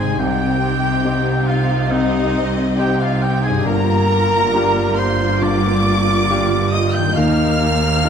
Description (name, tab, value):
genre	cinematic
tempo	69 BPM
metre	4/4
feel	rubato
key	G phrygian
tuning	A4 = 438 Hz
part	warm cor anglais	melody	0.0-8.1 s	Eb4 to G5	-22 LUFS	right 3 dB	none
part	warm symphonic violin section	melody	0.0-8.1 s	Eb5 to G6	-28 LUFS	left 2 dB	none
part	warm symphonic violin section	second line	0.0-8.1 s	Eb5 to G6	-25 LUFS	left 3 dB	none
part	bright grand piano	accompaniment	0.0-8.1 s	G1 to Bb4	-21 LUFS	left 2 dB	none
part	rich symphonic viola section	accompaniment	0.0-8.1 s	Bb3 to F4	-23 LUFS	right 1 dB	none
part	concert harp	arpeggios	0.0-8.1 s	G2 to Eb5	-26 LUFS	left 9 dB	none
part	rich studio cello section	bass	0.0-8.1 s	Eb2 to C3	-22 LUFS	right 2 dB	none
part	rich symphonic double bass section	bass	0.0-8.1 s	G1 to Eb2	-23 LUFS	right 3 dB	none
room	moderate concert hall reverb, RT60 1.8 s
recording	dark, warm production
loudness	-14 LUFS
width	side -7 dB against mid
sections	0.0-8.1 A section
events	none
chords	0.2 Cm; 3.7 Gm7; 7.2 Ebsus2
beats	| 0.20 1.05 1.92 2.79 | 3.66 4.53 5.41 6.29 | 7.16 8.04